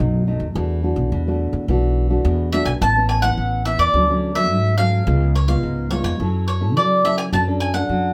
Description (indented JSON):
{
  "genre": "samba and choro",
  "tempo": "106 BPM",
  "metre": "4/4",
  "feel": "straight",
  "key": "A major",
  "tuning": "A4 = 437 Hz",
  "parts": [
    { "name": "bowl-back mandolin", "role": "melody", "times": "0.0-8.1 s", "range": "C#5 to A5", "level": "-22 LUFS", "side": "equal", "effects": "none" },
    { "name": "nylon-string guitar", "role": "accompaniment", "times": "0.0-8.1 s", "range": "F#2 to A4", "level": "-26 LUFS", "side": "equal", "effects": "none" },
    { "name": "upright bass", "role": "bass", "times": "0.0-8.1 s", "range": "A1 to F#3", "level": "-22 LUFS", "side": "equal", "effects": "none" }
  ],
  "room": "light reverb",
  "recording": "none",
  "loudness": "-19 LUFS",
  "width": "mono",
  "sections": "0.0-2.8 A section; 2.8-8.1 B section",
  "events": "mandolin solo 0.0-2.8",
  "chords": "0.0 B7; 0.6 E9sus4; 2.8 Aadd9; 3.9 Dmaj7; 5.1 C#7; 6.2 F#m7; 7.3 Dmaj7/F#"
}